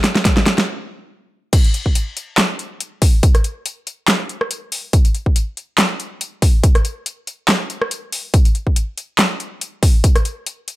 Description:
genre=dubstep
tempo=141 BPM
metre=4/4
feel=swing 55% on 16ths, half-time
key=none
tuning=none
part: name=dubstep drum kit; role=drums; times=0.0-10.8 s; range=crash cymbal, handclaps, hi-hat, rim click, snare drum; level=-18 LUFS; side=equal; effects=none
part: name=electronic kick drum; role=drums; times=0.3-10.1 s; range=none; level=-13 LUFS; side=equal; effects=none
room=little or no reverb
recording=none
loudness=-15 LUFS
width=side -17 dB against mid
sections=0.0-1.5 A section; 1.5-10.8 B section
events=build-up 0.0-1.5; drum fill 0.0-0.7; stop 0.7-1.5; drop 1.5-10.8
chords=none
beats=0.25 0.68 1.10 | 1.53 1.95 2.38 2.81 | 3.23 3.66 4.08 4.51 | 4.93 5.36 5.78 6.21 | 6.63 7.06 7.49 7.91 | 8.34 8.76 9.19 9.61 | 10.04 10.46

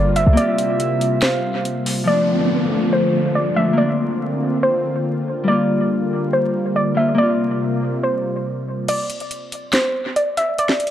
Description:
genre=hip hop, trap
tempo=141 BPM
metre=4/4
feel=half-time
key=unclear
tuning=A4 = 440 Hz
part: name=soft round pluck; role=melody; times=0.0-10.9 s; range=C5 to E5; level=-21 LUFS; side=equal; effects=chorus, low-pass filter, dub echo
part: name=Celtic harp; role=accompaniment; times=0.0-10.4 s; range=F3 to G4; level=-22 LUFS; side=left 3 dB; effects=low-pass filter, dub echo
part: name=warm analog pad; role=sustained chords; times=0.0-8.9 s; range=C3 to F4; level=-22 LUFS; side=equal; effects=chorus
part: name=trap drum kit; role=drums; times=0.2-2.0, 8.9-10.9 s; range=crash cymbal, handclaps, hi-hat, snare drum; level=-24 LUFS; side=equal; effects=dub echo
part: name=gliding portamento lead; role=second line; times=0.4-1.6 s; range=E5 to F5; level=-26 LUFS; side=right 5 dB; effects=chorus, dub echo
part: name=downlifter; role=sound effects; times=2.1-5.5 s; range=none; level=-25 LUFS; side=right 3 dB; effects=none
room=light reverb, digital ambience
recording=echo-heavy mix, vinyl crackle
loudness=-16 LUFS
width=side -11 dB against mid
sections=0.0-2.1 A section; 2.1-8.9 B section; 8.9-10.9 C section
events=break 0.4-2.1; kick muted 8.9-10.9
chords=0.4 C7sus4; 2.1 Dm; 3.8 Bbadd9; 5.5 Gm7; 7.2 C7sus4; 8.9 N.C.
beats=| 0.37 0.80 1.23 1.65 | 2.08 2.50 2.93 3.35 | 3.78 4.20 4.63 5.05 | 5.48 5.91 6.33 6.76 | 7.18 7.61 8.03 8.46 | 8.88 9.31 9.73 10.16 | 10.59

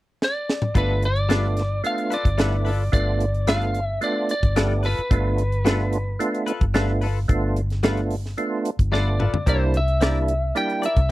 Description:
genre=straight-eighth soul blues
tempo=110 BPM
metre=4/4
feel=straight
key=G mixolydian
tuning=A4 = 439 Hz
part: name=lightly driven lead guitar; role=melody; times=0.2-11.1 s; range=B4 to G5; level=-26 LUFS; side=equal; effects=none
part: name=tight funk drum kit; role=drums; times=0.2-11.1 s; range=hi-hat, kick drum, snare drum, toms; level=-22 LUFS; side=equal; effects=none
part: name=percussive tonewheel organ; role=accompaniment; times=0.7-10.9 s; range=G3 to G4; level=-26 LUFS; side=right 2 dB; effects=slow rotary speaker, chorus vibrato
part: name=direct-recorded clean electric guitar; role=stabs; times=0.7-11.0 s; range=G3 to D5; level=-29 LUFS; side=left 6 dB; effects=analog chorus
part: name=vintage muted fingered electric bass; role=bass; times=0.8-11.1 s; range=G1 to C2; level=-22 LUFS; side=equal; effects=none
room=small room ambience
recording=dry, close 1970s-style studio recording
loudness=-20 LUFS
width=side -17 dB against mid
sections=0.8-11.1 A section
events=drum fill 0.2-0.8, 8.9-9.5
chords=0.0 N.C.; 0.8 G9; 9.5 C9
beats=0.21 | 0.75 1.30 1.84 2.39 | 2.93 3.47 4.02 4.56 | 5.11 5.65 6.20 6.74 | 7.28 7.83 8.37 8.92 | 9.46 10.01 10.55 11.10

